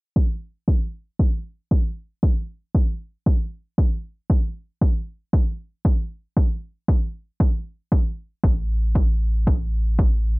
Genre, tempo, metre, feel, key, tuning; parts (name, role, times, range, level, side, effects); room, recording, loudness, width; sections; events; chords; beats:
dub techno; 116 BPM; 4/4; swing 54% on 16ths; A4 = 439 Hz
electronic kick drum; drums; 0.2-10.1 s; -18 LUFS; equal
pure sine sub bass; bass; 8.4-10.4 s; A1; -21 LUFS; equal; sidechain pumping
little or no reverb; low-pass filter; -20 LUFS; side -24 dB against mid
0.2-10.4 A section
filter sweep 0.2-10.4
| 0.16 0.68 1.19 1.71 | 2.23 2.75 3.26 3.78 | 4.30 4.82 5.33 5.85 | 6.37 6.88 7.40 7.92 | 8.44 8.95 9.47 9.99